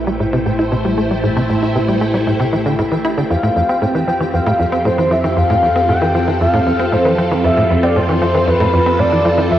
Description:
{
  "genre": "ambient, sequencer-driven space music",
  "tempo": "116 BPM",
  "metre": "4/4",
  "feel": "straight",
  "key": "unclear",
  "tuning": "A4 = 439 Hz",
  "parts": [
    { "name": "phased string machine", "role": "sustained chords", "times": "0.0-9.6 s", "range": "A3 to G5", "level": "-19 LUFS", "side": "equal", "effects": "ensemble chorus, phaser, cassette tape" },
    { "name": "analog drone", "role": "bass", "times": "0.0-9.6 s", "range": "A1 to F2", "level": "-22 LUFS", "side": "equal", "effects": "chorus" },
    { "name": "pulsing gated texture", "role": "texture", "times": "0.0-9.6 s", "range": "G4 to G5", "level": "-28 LUFS", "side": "equal", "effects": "chorus, built-in reverb, cassette tape" },
    { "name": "tight sequencer bass", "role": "riff", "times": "0.1-9.6 s", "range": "F2 to E4", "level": "-17 LUFS", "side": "equal", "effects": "wide subtle chorus, cassette tape, tape echo" },
    { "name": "pulse-width lead", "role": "melody", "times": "3.3-9.6 s", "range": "B4 to G5", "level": "-16 LUFS", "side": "equal", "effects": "chorus, cassette tape, tape echo" }
  ],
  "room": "wet spring reverb, RT60 2.8 s",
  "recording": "home recording on cassette",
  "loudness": "-13 LUFS",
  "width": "side -12 dB against mid",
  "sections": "0.0-9.6 A section",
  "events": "fade-in on synth texture 0.0-9.6",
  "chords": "0.0 Am7; 3.3 F",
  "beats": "0.20 0.72 | 1.24 1.75 2.27 2.79 | 3.30 3.82 4.34 4.86 | 5.37 5.89 6.41 6.92 | 7.44 7.96 8.48 8.99 | 9.51"
}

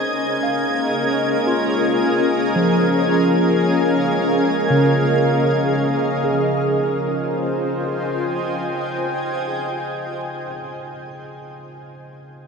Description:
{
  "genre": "ambient",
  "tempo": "free time",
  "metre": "none",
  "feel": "none",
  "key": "F minor",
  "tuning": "A4 = 440 Hz",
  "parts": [
    { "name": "granular cloud pad", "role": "sustained chords", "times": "0.0-11.1 s", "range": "Db4 to Ab5", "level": "-19 LUFS", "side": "equal", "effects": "built-in reverb, shimmer reverb" },
    { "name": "warm studio violin section", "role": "texture", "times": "0.0-6.3 s", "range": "Ab6", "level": "-29 LUFS", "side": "right 1 dB", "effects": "shimmer reverb" },
    { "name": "overdriven tine electric piano", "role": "arpeggios", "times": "0.4-12.5 s", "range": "Db3 to F5", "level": "-23 LUFS", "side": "equal", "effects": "analog chorus, diffuse ambient delay, shimmer reverb" }
  ],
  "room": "wet huge ambient reverb, RT60 7.8 s",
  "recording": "in a vast, echoing space",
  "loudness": "-17 LUFS",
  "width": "side -5 dB against mid",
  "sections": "0.0-6.2 A section; 6.2-10.5 B section",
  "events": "none",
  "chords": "0.0 Db69; 6.2 Fm9",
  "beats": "free time"
}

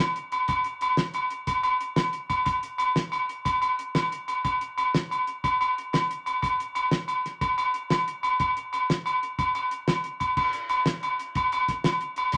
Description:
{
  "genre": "highlife",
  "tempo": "121 BPM (dotted quarters)",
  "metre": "12/8",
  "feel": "straight",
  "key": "none",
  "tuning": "none",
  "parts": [
    { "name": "agogo bells", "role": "percussion", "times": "0.0-12.4 s", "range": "none", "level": "-28 LUFS", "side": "equal", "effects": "none" },
    { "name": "cloth-damped thuddy drum kit", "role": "drums", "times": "0.2-12.4 s", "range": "crash cymbal, hi-hat, kick drum, snare drum", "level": "-31 LUFS", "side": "equal", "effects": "none" }
  ],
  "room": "moderate studio ambience, RT60 0.5 s",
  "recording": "none",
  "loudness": "-27 LUFS",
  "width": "mono",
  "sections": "0.0-10.4 A section; 10.4-12.4 B section",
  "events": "none",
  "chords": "none",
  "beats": "| 0.49 0.98 1.48 1.98 | 2.47 2.96 3.46 3.95 | 4.45 4.94 5.44 5.93 | 6.43 6.92 7.42 7.91 | 8.40 8.89 9.39 9.88 | 10.37 10.87 11.36 11.85 | 12.34"
}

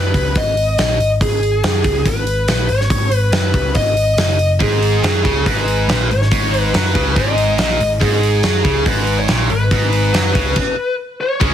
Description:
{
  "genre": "hard rock",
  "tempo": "141 BPM",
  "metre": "4/4",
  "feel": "straight",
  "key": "G# minor",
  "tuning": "A4 = 440 Hz",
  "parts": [
    { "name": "bluesy overdriven lead guitar", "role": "melody", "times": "0.0-11.5 s", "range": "G#4 to D#5", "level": "-18 LUFS", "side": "left 1 dB", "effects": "distortion, digital delay" },
    { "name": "overdriven picked electric bass", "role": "bass", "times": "0.0-11.5 s", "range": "F#1 to F#2", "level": "-18 LUFS", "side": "equal", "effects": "none" },
    { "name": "gated 80s drum kit", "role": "drums", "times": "0.1-11.5 s", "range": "crash cymbal, hi-hat, kick drum, snare drum", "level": "-19 LUFS", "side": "equal", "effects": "none" },
    { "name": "heavy high-gain guitar", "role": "riff", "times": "4.6-11.5 s", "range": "G#2 to C#4", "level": "-18 LUFS", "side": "right 1 dB", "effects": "distortion" },
    { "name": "high-gain distorted guitar", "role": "riff", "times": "11.4-11.5 s", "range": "C#3 to C#4", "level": "-20 LUFS", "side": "left 1 dB", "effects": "distortion" }
  ],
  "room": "light reverb",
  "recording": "heavily compressed radio sound",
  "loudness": "-13 LUFS",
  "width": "side -10 dB against mid",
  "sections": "0.0-11.4 A section",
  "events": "stop 10.6-11.4",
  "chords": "0.0 G#m",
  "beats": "0.36 0.78 | 1.21 1.63 2.06 2.48 | 2.91 3.33 3.76 4.18 | 4.61 5.03 5.46 5.88 | 6.31 6.74 7.16 7.59 | 8.01 8.44 8.86 9.29 | 9.71 10.14 10.56 10.99 | 11.41"
}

